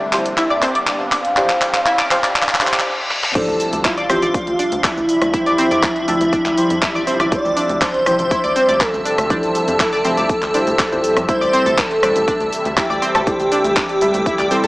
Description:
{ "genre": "progressive house", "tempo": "121 BPM", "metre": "4/4", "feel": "straight", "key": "D minor", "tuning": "A4 = 441 Hz", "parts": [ { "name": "warm velvety synth lead", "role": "melody", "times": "0.0-14.7 s", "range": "E4 to F5", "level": "-19 LUFS", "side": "equal", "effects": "chorus, digital delay" }, { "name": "lush unison pad", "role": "sustained chords", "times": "0.0-14.7 s", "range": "C3 to E5", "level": "-26 LUFS", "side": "equal", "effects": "chorus, sidechain pumping" }, { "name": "deep mellow chord stab", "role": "stabs", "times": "0.0-14.7 s", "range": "E3 to F5", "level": "-23 LUFS", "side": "equal", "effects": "chorus, sidechain pumping, digital delay" }, { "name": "riser, reverse cymbal and sub drop", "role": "sound effects", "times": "0.0-5.3 s", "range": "none", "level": "-27 LUFS", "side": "left 1 dB", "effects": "none" }, { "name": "house drum kit", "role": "drums", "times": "0.1-14.7 s", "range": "cabasa, crash cymbal, handclaps, hi-hat, rim click, snare drum", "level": "-21 LUFS", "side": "equal", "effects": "high-pass filter on snare, high-pass filter on hats, high-pass filter on cymbals, high-pass filter on perc, high-pass filter on room" }, { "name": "analog pluck", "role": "arpeggios", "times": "0.4-14.7 s", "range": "D3 to D5", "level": "-22 LUFS", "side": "equal", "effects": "analog chorus, sidechain pumping, digital delay" }, { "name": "airy dreamy lead", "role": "second line", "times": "3.4-14.7 s", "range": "E4 to D5", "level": "-25 LUFS", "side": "equal", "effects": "chorus, sidechain pumping, digital delay" }, { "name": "electronic kick drum", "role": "drums", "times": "3.4-14.4 s", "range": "none", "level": "-24 LUFS", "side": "equal", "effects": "none" }, { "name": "tight sequencer bass", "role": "bass", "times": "3.5-14.7 s", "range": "A1 to F2", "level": "-28 LUFS", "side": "equal", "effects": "sidechain pumping" } ], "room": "moderate scoring stage reverb, RT60 1.6 s, digital ambience", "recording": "high-pass filter, small speaker sound", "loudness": "-14 LUFS", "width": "side -20 dB against mid", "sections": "0.0-3.4 A section; 3.4-14.7 B section", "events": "build-up 0.0-3.4; drum fill 0.0-2.9, 3.1; riser 0.0-2.9; filter sweep on synth pluck 0.0-3.4; filter sweep on soft synth lead 0.0-3.4; filter sweep 0.0-3.4; reverse cymbal 2.4-3.4; break 2.9-3.4; drop 3.4-14.7; impact 3.4-5.3", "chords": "0.0 Dm11; 11.3 Am7", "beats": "0.38 0.87 | 1.37 1.86 2.36 2.86 | 3.35 3.85 4.34 4.84 | 5.33 5.83 6.33 6.82 | 7.32 7.82 8.31 8.81 | 9.30 9.80 10.29 10.79 | 11.29 11.78 12.28 12.77 | 13.27 13.77 14.26" }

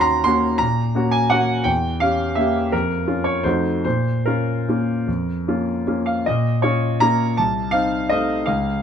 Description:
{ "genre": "classical, piano waltz", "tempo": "143-180 BPM", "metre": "3/4", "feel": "rubato", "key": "Bb minor", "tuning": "A4 = 440 Hz", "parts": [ { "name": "clear concert grand piano", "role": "solo", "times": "0.0-8.8 s", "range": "C2 to C6", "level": "-18 LUFS", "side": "equal", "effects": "none" } ], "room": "moderate large studio reverb, RT60 1.2 s", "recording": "close, detailed microphones", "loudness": "-18 LUFS", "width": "side -8 dB against mid", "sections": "0.0-6.3 A section; 6.3-8.8 B section", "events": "none", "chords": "0.0 Ebm7; 1.7 Edim7; 2.7 Bbm/F; 3.4 F7b9; 3.8 Bbm; 7.4 Adim/C", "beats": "0.25 | 0.60 0.95 1.31 | 1.66 2.01 2.37 | 2.72 3.07 3.44 | 3.85 4.25 4.67 | 5.07 5.46 5.87 | 6.26 6.63 7.00 | 7.38 7.73 8.09 | 8.46 8.82" }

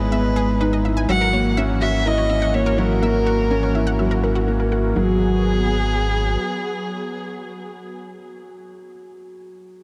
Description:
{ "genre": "piano and strings electronica", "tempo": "124 BPM", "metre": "4/4", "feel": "straight", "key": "G# minor", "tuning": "A4 = 440 Hz", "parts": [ { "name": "dark violin", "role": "melody", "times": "0.0-8.0 s", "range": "G#4 to F#5", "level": "-27 LUFS", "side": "equal", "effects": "delay" }, { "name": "lush unison pad", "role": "sustained chords", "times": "0.0-8.0 s", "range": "E3 to G#4", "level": "-31 LUFS", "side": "equal", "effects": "chorus" }, { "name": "felt-muted upright piano", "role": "riff", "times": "0.0-9.8 s", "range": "F#3 to A#4", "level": "-26 LUFS", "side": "equal", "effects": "delay" }, { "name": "round analog bass", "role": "bass", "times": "0.0-6.4 s", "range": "G#1", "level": "-24 LUFS", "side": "equal", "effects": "none" }, { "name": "analog pluck", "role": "arpeggios", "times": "0.1-5.2 s", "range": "F#4 to G#5", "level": "-32 LUFS", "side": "equal", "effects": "chorus, delay" } ], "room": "moderate huge ambient reverb, RT60 6.2 s", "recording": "dark, warm production", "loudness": "-20 LUFS", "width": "mono", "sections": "0.0-5.0 A section; 5.0-8.8 B section", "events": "drop 0.0-5.0", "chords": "0.0 Emaj7/G#; 1.1 F#7/G#; 5.0 G#m7", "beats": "0.12 0.61 | 1.09 1.57 2.06 2.54 | 3.03 3.51 3.99 4.48 | 4.96 5.45 5.93 6.41 | 6.90 7.38 7.87 8.35" }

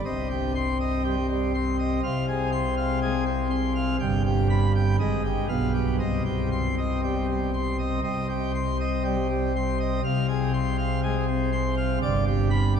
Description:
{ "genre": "classical, organ toccata", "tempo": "121 BPM", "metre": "4/4", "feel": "straight", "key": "C minor", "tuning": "A4 = 440 Hz", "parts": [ { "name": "pipe organ, plenum", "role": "solo", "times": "0.1-12.8 s", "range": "G1 to C6", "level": "-23 LUFS", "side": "equal", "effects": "none" } ], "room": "wet cathedral reverb, RT60 7.4 s", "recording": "dark, warm production", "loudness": "-23 LUFS", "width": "side -7 dB against mid", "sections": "0.0-8.0 A section; 8.0-12.8 A section", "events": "none", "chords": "0.0 Cm; 2.0 Fm/C; 4.0 G; 5.0 Ab5; 5.5 G7/B; 6.0 Cm; 10.0 Fm/C; 12.0 G", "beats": "| 0.05 0.55 1.04 1.54 | 2.04 2.52 3.02 3.51 | 4.00 4.50 4.99 5.50 | 6.00 6.51 7.03 7.54 | 8.04 8.55 9.05 9.55 | 10.04 10.54 11.03 11.53 | 12.02 12.51" }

